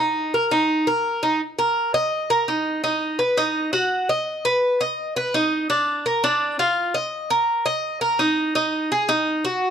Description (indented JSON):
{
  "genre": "latin",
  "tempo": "168 BPM",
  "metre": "4/4",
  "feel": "straight",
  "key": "Eb harmonic minor",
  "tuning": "A4 = 439 Hz",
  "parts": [
    { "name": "Cuban tres", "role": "solo", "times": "0.0-9.7 s", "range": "D4 to Eb5", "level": "-19 LUFS", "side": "equal", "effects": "none" }
  ],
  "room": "light reverb",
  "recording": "close, detailed microphones",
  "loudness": "-19 LUFS",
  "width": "side -8 dB against mid",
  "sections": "0.0-1.4 A section; 1.4-9.7 B section",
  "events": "none",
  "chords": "none",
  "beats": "0.33 0.69 1.05 | 1.41 1.76 2.12 2.48 | 2.84 3.19 3.55 3.91 | 4.27 4.62 4.98 5.34 | 5.70 6.05 6.41 6.77 | 7.12 7.48 7.84 8.20 | 8.55 8.91 9.27 9.62"
}